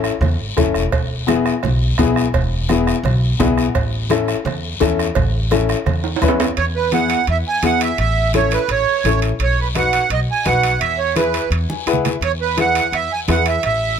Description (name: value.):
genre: latin, cumbia.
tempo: 170 BPM.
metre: 4/4.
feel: straight.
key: E major.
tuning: A4 = 440 Hz.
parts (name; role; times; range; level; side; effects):
warm upright piano; accompaniment; 0.0-13.5 s; B3 to G#5; -20 LUFS; left 7 dB; none.
upright bass; bass; 0.0-14.0 s; E1 to E2; -21 LUFS; equal; none.
bombo; percussion; 0.0-6.6 s; none; -23 LUFS; right 3 dB; none.
guiro; percussion; 0.0-14.0 s; none; -30 LUFS; left 6 dB; none.
congas; percussion; 0.2-13.8 s; none; -26 LUFS; right 3 dB; none.
cowbell and timbales; percussion; 0.2-13.8 s; none; -26 LUFS; right 8 dB; none.
accordion; melody; 6.6-14.0 s; B4 to G#5; -18 LUFS; right 7 dB; light tremolo tuning.
room: light reverb.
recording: none.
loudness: -15 LUFS.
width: side -8 dB against mid.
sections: 0.0-6.6 A section; 6.6-14.0 B section.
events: upright piano fill 3.2-3.8, 11.5-12.2; drum fill 6.0-6.6, 11.7-12.2.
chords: 0.0 A; 0.9 E; 3.8 A; 6.6 E; 8.0 A; 9.4 B; 10.8 E.